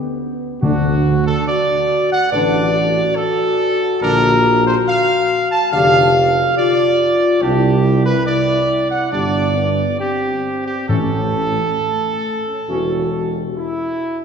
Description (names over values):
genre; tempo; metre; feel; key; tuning
classical; 70 BPM; 4/4; uneven beats; D major; A4 = 440 Hz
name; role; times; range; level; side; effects
warm trumpet section; melody; 0.0-14.2 s; E4 to A5; -17 LUFS; right 1 dB; none
mellow French horn section; sustained chords; 0.0-14.2 s; A3 to B4; -20 LUFS; left 3 dB; none
bright trombone section; sustained chords; 0.6-13.0 s; D3 to D4; -27 LUFS; right 1 dB; none
warm tuba; bass; 0.6-13.4 s; E1 to D2; -21 LUFS; right 2 dB; none
timpani; percussion; 0.6-1.9, 10.9-12.2 s; A2 to D3; -22 LUFS; left 2 dB; none
room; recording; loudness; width
wet church reverb, RT60 2.9 s; heard from further back in the room; -14 LUFS; side -6 dB against mid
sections
0.0-14.2 A section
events
none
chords
0.0 G; 0.6 D; 4.0 Bb; 7.4 Csus2; 10.9 A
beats
| 0.63 1.48 2.32 3.16 | 4.02 4.89 5.73 6.57 | 7.42 8.27 9.12 10.00 | 10.89 11.79 12.69 13.58